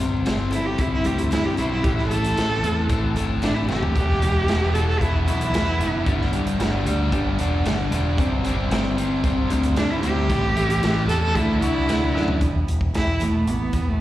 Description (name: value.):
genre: quiet-loud alternative rock.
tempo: 114 BPM.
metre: 4/4.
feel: straight.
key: E minor.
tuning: A4 = 438 Hz.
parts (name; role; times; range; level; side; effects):
picked steel-string acoustic guitar; arpeggios; 0.0-4.0, 12.4-14.0 s; A2 to A4; -32 LUFS; right 3 dB; none.
overdriven electric guitar; riff; 0.0-12.4 s; E2 to D4; -26 LUFS; left 5 dB; none.
growling picked electric bass; bass; 0.0-14.0 s; E1 to G2; -24 LUFS; equal; overdrive.
raw garage drum kit; drums; 0.3-13.9 s; hi-hat, kick drum, snare drum, toms; -26 LUFS; equal; none.
dark cello; melody; 0.5-6.3, 9.8-14.0 s; A3 to A4; -25 LUFS; right 1 dB; slapback echo, tape echo.
thick fuzz guitar; riff; 4.0-12.4 s; A2 to G4; -29 LUFS; right 10 dB; distortion.
room: little or no reverb.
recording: live gig heard through the venue's PA, recital hall reverb.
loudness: -19 LUFS.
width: side -14 dB against mid.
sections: 0.0-12.4 A section; 12.4-14.0 B section.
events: cello solo 0.0-12.4; drum fill 3.7, 12.1.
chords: 0.0 C6/G; 1.8 Am7; 4.0 Em; 6.1 G; 8.2 C/G; 10.3 Am7; 11.4 Dadd9; 12.4 Em.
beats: 0.26 0.79 1.31 | 1.84 2.37 2.90 3.43 | 3.96 4.48 5.01 5.54 | 6.07 6.60 7.13 7.65 | 8.18 8.71 9.24 9.77 | 10.29 10.82 11.35 11.88 | 12.41 12.94 13.47 14.00.